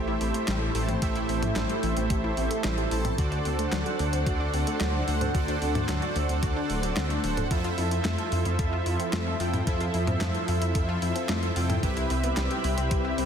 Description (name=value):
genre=synthwave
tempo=111 BPM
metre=4/4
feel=straight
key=unclear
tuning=A4 = 441 Hz
part: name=chorused pulse-width pad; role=sustained chords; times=0.0-13.3 s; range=F3 to B5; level=-32 LUFS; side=right 1 dB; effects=sidechain pumping
part: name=analog pluck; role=arpeggios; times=0.0-13.3 s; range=F#3 to A4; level=-35 LUFS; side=left 4 dB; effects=chorus, ping-pong delay
part: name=analog synth brass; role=stabs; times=0.0-13.3 s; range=C3 to A5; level=-32 LUFS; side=right 3 dB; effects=chorus, ping-pong delay
part: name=dark detuned saw bass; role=bass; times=0.0-13.3 s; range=D1 to F2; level=-28 LUFS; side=equal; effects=none
part: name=clean 12-bit digital drum machine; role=drums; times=0.2-13.3 s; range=handclaps, hi-hat, snare drum, toms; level=-33 LUFS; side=equal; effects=overdrive
part: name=electronic kick drum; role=drums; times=1.0-13.0 s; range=none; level=-29 LUFS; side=equal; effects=overdrive
room=light reverb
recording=dense, heavily limited modern master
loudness=-24 LUFS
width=side -8 dB against mid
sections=0.0-13.3 A section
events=none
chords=0.0 Am7; 3.2 D7; 7.5 Fmaj7; 11.8 Cmaj7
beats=0.48 | 1.02 1.56 2.10 2.64 | 3.18 3.72 4.26 4.80 | 5.35 5.89 6.43 6.97 | 7.51 8.05 8.59 9.13 | 9.67 10.21 10.75 11.29 | 11.83 12.37 12.91